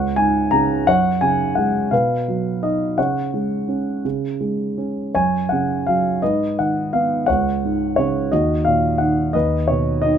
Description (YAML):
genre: classical, lyrical solo piano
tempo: 57 BPM (dotted quarters)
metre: 6/8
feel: rubato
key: unclear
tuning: A4 = 437 Hz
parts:
  - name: dark concert grand piano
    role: solo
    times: 0.0-10.2 s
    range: C#2 to A#5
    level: -17 LUFS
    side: equal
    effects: none
room: moderate studio reverb, RT60 0.6 s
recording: none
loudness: -17 LUFS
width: side -8 dB against mid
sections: 0.0-10.2 A section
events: none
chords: 0.0 C#5; 0.9 F#sus2; 1.9 B; 3.0 C#5; 5.1 F#5; 6.2 G#m; 7.3 C#sus4; 8.3 D#m; 9.3 Badd9/D#